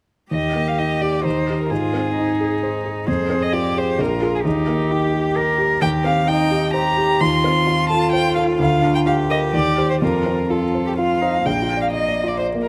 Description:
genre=quick classical-period movement for piano trio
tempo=130 BPM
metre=3/4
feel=straight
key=Eb major, Bb major from 5.8 s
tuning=A4 = 441 Hz
part: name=warm violin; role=melody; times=0.3-12.7 s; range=G4 to C6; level=-24 LUFS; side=equal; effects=none
part: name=warm cello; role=second line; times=0.3-12.7 s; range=Bb3 to Bb4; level=-26 LUFS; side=equal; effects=none
part: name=clear grand piano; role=accompaniment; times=0.3-12.7 s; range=Bb1 to Eb5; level=-22 LUFS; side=equal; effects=none
room=moderate concert hall reverb, RT60 1.8 s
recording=close, detailed microphones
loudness=-19 LUFS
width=mono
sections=0.3-11.5 A section; 11.5-12.7 B section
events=none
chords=0.3 Eb; 1.7 Ab; 3.1 Fm; 4.0 Bb5; 4.5 Eb; 5.8 Cm/Eb; 7.2 F7/Eb; 8.6 Bb/D; 9.5 Cm/Eb; 10.0 F; 11.5 Bb

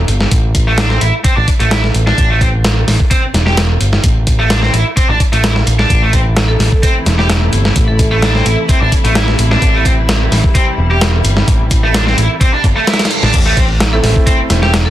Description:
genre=breakbeat, breaks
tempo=129 BPM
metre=4/4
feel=swing 53% on 16ths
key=A minor pentatonic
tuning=A4 = 441 Hz
part: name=overdriven picked electric bass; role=bass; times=0.0-14.9 s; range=E1 to A1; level=-13 LUFS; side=equal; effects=none
part: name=dusty soul sampler-style drum kit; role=drums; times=0.1-14.9 s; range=crash cymbal, hi-hat, kick drum, snare drum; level=-13 LUFS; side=equal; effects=none
part: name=tight distorted guitar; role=riff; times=0.7-14.7 s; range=A3 to G4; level=-17 LUFS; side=right 1 dB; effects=distortion, tube saturation, dub echo
part: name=dark studio string section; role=sustained chords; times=5.9-13.3 s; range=C3 to E4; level=-21 LUFS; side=left 2 dB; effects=sidechain pumping
part: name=vibraphone with hard mallets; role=melody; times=6.5-8.6, 13.9-14.9 s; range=A4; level=-22 LUFS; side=right 2 dB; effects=old record sound, dub echo
part: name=reverse cymbal and sub drop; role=sound effects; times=12.7-14.9 s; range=none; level=-23 LUFS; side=right 1 dB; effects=none
part: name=clear grand piano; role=stabs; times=13.9-14.7 s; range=A3 to E4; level=-19 LUFS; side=right 1 dB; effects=vintage 12-bit sampler grit, low-pass filter, dub echo
room=little or no reverb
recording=dense, heavily limited modern master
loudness=-9 LUFS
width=side -13 dB against mid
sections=0.0-13.3 A section; 13.3-14.9 B section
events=reverse cymbal 12.7-13.3; drop 13.3-14.9; impact 13.3-14.9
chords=0.0 Am

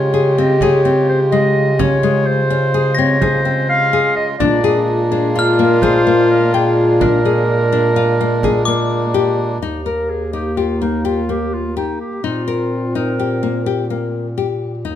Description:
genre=contemporary instrumental, chamber music in an uneven meter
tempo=253 BPM (eighths)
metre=11/8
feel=straight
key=unclear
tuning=A4 = 441 Hz
part: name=mellow clarinet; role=melody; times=0.0-13.9 s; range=Eb4 to F5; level=-20 LUFS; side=right 1 dB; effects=none
part: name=dark French horn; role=second line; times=0.0-15.0 s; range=Bb3 to G4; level=-19 LUFS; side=left 1 dB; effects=none
part: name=pedal harmonium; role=sustained chords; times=0.0-9.6 s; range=Db3 to F4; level=-23 LUFS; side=right 4 dB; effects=none
part: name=nylon-string guitar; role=arpeggios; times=0.0-15.0 s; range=Ab3 to G5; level=-20 LUFS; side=left 6 dB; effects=none
part: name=mellow bass clarinet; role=bass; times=0.0-15.0 s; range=Eb2 to Db3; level=-20 LUFS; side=equal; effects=none
part: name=frame drum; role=percussion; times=0.6-9.5 s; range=none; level=-23 LUFS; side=right 4 dB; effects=none
part: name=glockenspiel with brass mallets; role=texture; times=2.9-9.8 s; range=D6 to Bb6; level=-24 LUFS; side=left 2 dB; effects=none
room=moderate recital hall reverb, RT60 1.8 s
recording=none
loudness=-13 LUFS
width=side -10 dB against mid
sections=0.0-9.6 A section; 9.6-15.0 B section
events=none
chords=0.0 Dbmaj7; 4.4 Bb7; 9.6 Eb; 12.2 Bbsus4

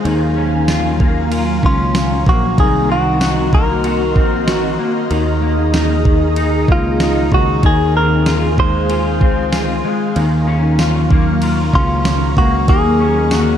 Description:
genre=dream pop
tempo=95 BPM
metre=4/4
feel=straight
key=unclear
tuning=A4 = 439 Hz
part: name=ethereal airy pad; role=sustained chords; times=0.0-13.6 s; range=Gb3 to Eb6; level=-21 LUFS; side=equal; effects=ensemble chorus, built-in reverb
part: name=electric guitar at the edge of break-up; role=arpeggios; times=0.0-13.6 s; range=Eb3 to Gb4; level=-18 LUFS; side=left 3 dB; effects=ensemble chorus, ping-pong delay
part: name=picked electric bass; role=bass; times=0.1-13.6 s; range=Bb1 to Eb2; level=-18 LUFS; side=right 1 dB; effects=none
part: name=detuned 8-bit digital drum machine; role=drums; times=0.1-13.5 s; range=kick drum, ride cymbal, snare drum, tambourine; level=-17 LUFS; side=right 1 dB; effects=none
part: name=direct-recorded clean electric guitar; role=melody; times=1.7-13.6 s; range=F4 to C5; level=-19 LUFS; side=equal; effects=phaser, ping-pong delay
room=light reverb, digital ambience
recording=dark, warm production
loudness=-12 LUFS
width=side -9 dB against mid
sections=0.0-13.6 A section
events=none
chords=0.1 Gbmaj7/Eb; 2.6 Cm7b5; 5.1 Absus2/Eb; 7.6 Dbmaj7/Eb; 10.2 Gbmaj7/Eb; 12.7 Ebm7

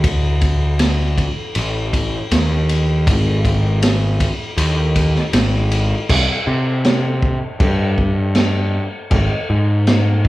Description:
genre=psychedelic rock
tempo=79 BPM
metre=4/4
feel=straight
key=C minor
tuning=A4 = 438 Hz
part: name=fuzz picked electric bass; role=bass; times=0.0-10.3 s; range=Ab1 to C3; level=-16 LUFS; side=equal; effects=overdrive
part: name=vintage drum kit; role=drums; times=0.0-10.3 s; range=crash cymbal, kick drum, ride cymbal, snare drum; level=-18 LUFS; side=equal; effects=none
room=moderate large studio reverb, RT60 0.8 s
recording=band playing live in one room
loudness=-15 LUFS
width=side -17 dB against mid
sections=0.0-6.1 A section; 6.1-10.3 B section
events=none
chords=none

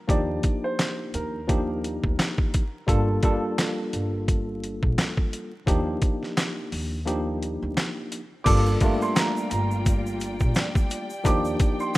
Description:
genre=hip hop, boom-bap hip-hop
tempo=86 BPM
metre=4/4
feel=swing 58% on 16ths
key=G minor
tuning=A4 = 442 Hz
part: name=warm upright piano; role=melody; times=0.0-2.8, 8.4-12.0 s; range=Bb4 to D6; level=-31 LUFS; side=right 2 dB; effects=high-pass filter, low-pass filter
part: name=tine electric piano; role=accompaniment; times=0.1-12.0 s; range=F3 to A4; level=-28 LUFS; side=equal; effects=overdrive, fast stereo tremolo, cassette tape, high-pass filter, low-pass filter
part: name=upright bass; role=bass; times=0.1-11.5 s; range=G1 to Eb2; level=-28 LUFS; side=equal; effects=none
part: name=boom bap sampler-style drum kit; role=drums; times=0.1-12.0 s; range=crash cymbal, handclaps, hi-hat, kick drum, snare drum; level=-24 LUFS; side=equal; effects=none
part: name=warm studio string section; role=sustained chords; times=8.5-12.0 s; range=Eb3 to G5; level=-35 LUFS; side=left 1 dB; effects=high-pass filter, low-pass filter
part: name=egg shaker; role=percussion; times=8.5-12.0 s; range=none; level=-47 LUFS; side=right 3 dB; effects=none
room=studio ambience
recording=rough home demo mix, vinyl crackle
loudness=-22 LUFS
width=side -18 dB against mid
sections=0.0-8.5 A section; 8.5-12.0 B section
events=break 7.1-8.5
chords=0.1 Ebmaj7; 2.9 Gm7; 5.7 Ebmaj7; 8.5 Gm7; 11.3 Ebmaj7

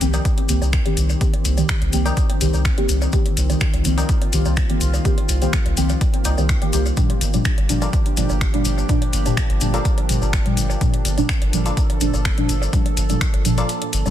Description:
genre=dub techno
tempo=125 BPM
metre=4/4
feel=straight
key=C minor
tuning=A4 = 441 Hz
part: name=warbly tape-like pad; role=sustained chords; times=0.0-14.1 s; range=Eb3 to A4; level=-28 LUFS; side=equal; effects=chorus, built-in reverb, sidechain pumping
part: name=deep mellow chord stab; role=stabs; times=0.0-14.1 s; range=Bb2 to G4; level=-24 LUFS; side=equal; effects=chorus, phaser, vintage 12-bit sampler grit, sidechain pumping, dub echo
part: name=soft dub sub bass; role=bass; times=0.0-14.1 s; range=G1 to C2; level=-21 LUFS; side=equal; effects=sidechain pumping
part: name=deep house drum kit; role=drums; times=0.0-14.0 s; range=finger snaps, hi-hat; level=-28 LUFS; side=left 1 dB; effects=overdrive, studio reverb, soft clipping on snare, dub echo
part: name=cabasa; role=percussion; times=0.0-14.1 s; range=none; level=-30 LUFS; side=left 5 dB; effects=none
part: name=congas and woodblock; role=percussion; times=0.0-14.1 s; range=none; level=-35 LUFS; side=right 1 dB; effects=sidechain pumping on perc, studio reverb, dub echo
part: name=wavetable chord stab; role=riff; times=0.1-13.7 s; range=F4 to G5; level=-31 LUFS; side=left 3 dB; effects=sidechain pumping, dub echo
part: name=electronic kick drum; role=drums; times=0.3-13.3 s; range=none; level=-21 LUFS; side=equal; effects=overdrive, studio reverb
room=light reverb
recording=dense, heavily limited modern master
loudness=-16 LUFS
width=side -11 dB against mid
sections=0.0-14.1 A section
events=break 13.7-14.1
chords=0.0 Cm7; 7.0 Gm7

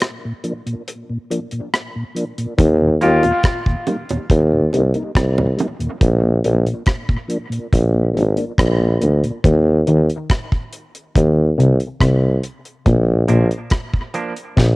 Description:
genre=dub reggae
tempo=70 BPM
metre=4/4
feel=straight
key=Eb major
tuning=A4 = 440 Hz
part: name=deep reggae drum kit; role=drums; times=0.0-14.8 s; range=hi-hat, kick drum, rim click, snare drum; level=-18 LUFS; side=equal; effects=cassette tape
part: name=mellow tonewheel organ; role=accompaniment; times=0.3-9.3 s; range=Eb2 to Eb4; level=-25 LUFS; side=left 1 dB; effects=chorus vibrato, slow rotary speaker, cassette tape, dub echo
part: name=electric guitar with an envelope filter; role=riff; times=2.6-2.8, 9.4-14.8 s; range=Bb2 to Eb3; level=-19 LUFS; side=left 1 dB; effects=ensemble chorus, cassette tape, dub echo
part: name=warm tuba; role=bass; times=2.6-14.8 s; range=Ab1 to Eb2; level=-14 LUFS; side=equal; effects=none
part: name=clear flugelhorn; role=melody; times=3.0-3.4 s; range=F4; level=-19 LUFS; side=left 2 dB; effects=cassette tape, dub echo
part: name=semi-hollow electric guitar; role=accompaniment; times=3.0-3.2, 13.3-14.3 s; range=F3 to G4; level=-27 LUFS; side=right 3 dB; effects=cassette tape, dub echo
part: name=bongos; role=percussion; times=3.0-5.8 s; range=none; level=-25 LUFS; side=right 4 dB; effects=dub echo
room=small room reverb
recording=home recording on cassette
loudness=-15 LUFS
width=side -22 dB against mid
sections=0.0-2.6 A section; 2.6-14.8 B section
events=break 0.0-2.6; part muted 6.0-14.8; drum fill 14.6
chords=0.0 Bb; 2.6 Eb; 6.0 Bb; 9.4 Cm; 12.9 Bb

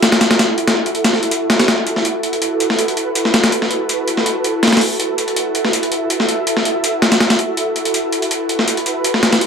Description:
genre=drum and bass, jungle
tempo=163 BPM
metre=4/4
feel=straight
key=F# minor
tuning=A4 = 442 Hz
part: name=ethereal airy pad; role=sustained chords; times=0.0-9.5 s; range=E4 to E5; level=-18 LUFS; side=right 1 dB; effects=ensemble chorus, built-in reverb, vintage 12-bit sampler grit
part: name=breakbeat sampler-style drum kit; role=drums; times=0.0-9.5 s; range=hi-hat, snare drum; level=-15 LUFS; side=left 1 dB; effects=overdrive, high-pass filter on hats, high-pass filter on snare, high-pass filter on room
room=moderate plate reverb, RT60 1.5 s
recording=vinyl crackle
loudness=-14 LUFS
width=side -6 dB against mid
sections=0.0-9.5 A section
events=filter sweep on ambient pad 0.0-9.5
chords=0.0 F#m7

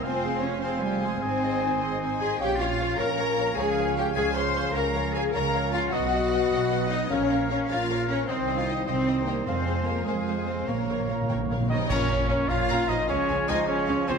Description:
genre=cinematic, heroic adventure film score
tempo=102 BPM (dotted quarters)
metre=12/8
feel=straight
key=Bb minor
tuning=A4 = 441 Hz
part: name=warm symphonic violin section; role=melody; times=0.0-14.2 s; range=G4 to C6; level=-34 LUFS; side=left 5 dB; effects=none
part: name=clear clarinet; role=second line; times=0.0-11.7 s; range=Bb4 to Db5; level=-38 LUFS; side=left 2 dB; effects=none
part: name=mellow cor anglais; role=second line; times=0.0-14.2 s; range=C4 to F5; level=-37 LUFS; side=right 2 dB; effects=none
part: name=mellow large flute ensemble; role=second line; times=0.0-14.2 s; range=Ab4 to Bb5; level=-38 LUFS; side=left 4 dB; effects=none
part: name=warm symphonic violin section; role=second line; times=0.0-14.2 s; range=C5 to C6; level=-38 LUFS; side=left 5 dB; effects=none
part: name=warm studio viola section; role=accompaniment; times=0.0-14.2 s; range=Db4 to Eb5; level=-36 LUFS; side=right 1 dB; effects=none
part: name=clear trombone section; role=sustained chords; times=0.0-14.2 s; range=Bb2 to Db4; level=-35 LUFS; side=right 4 dB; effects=none
part: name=warm French horn section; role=sustained chords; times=0.0-14.2 s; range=G3 to Bb4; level=-33 LUFS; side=left 7 dB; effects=none
part: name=dark trumpet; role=stabs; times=0.0-14.2 s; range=C5 to Ab5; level=-32 LUFS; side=left 1 dB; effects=none
part: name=rich symphonic double bass section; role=bass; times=0.0-14.2 s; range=F1 to F2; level=-32 LUFS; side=right 3 dB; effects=none
part: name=warm symphonic cello section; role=bass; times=0.0-14.2 s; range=G3 to C5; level=-30 LUFS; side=right 2 dB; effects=none
part: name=timpani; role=percussion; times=7.1-12.5 s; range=F2 to Bb2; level=-32 LUFS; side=right 1 dB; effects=none
part: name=clash cymbals and concert bass drum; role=percussion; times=11.9-12.7 s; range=none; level=-32 LUFS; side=left 1 dB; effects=none
room=wet scoring stage reverb, RT60 1.6 s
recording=dark, warm production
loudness=-23 LUFS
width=side -5 dB against mid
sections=0.0-11.9 A section; 11.9-14.2 B section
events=timpani fill 10.7-11.9; band accent 11.9-12.3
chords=0.0 Fm; 1.2 Ab; 2.4 Bbm; 3.6 Db; 4.8 Bbm/Db; 5.9 B; 7.1 Bbm; 8.3 Cm; 9.5 Fm; 10.7 Bbm; 13.1 Db

